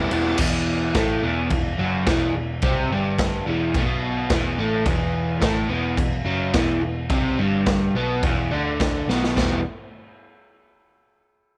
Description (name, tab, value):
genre	garage rock duo or trio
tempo	107 BPM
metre	4/4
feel	straight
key	E minor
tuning	A4 = 440 Hz
part	crunchy overdriven guitar	riff	0.0-9.6 s	E2 to E4	-25 LUFS	equal	none
part	picked electric bass	bass	0.0-9.6 s	E1 to D2	-30 LUFS	equal	overdrive
part	raw garage drum kit	drums	0.1-9.5 s	crash cymbal, kick drum, ride cymbal, snare drum, splash cymbal	-27 LUFS	equal	none
room	light reverb, small room ambience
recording	none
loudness	-22 LUFS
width	mono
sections	0.4-9.4 A section; 9.4-11.6 B section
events	drum fill 9.1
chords	0.4 Em; 9.4 E5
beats	| 0.38 0.94 1.50 2.06 | 2.62 3.17 3.73 4.29 | 4.85 5.41 5.98 6.54 | 7.10 7.66 8.23 8.79 | 9.36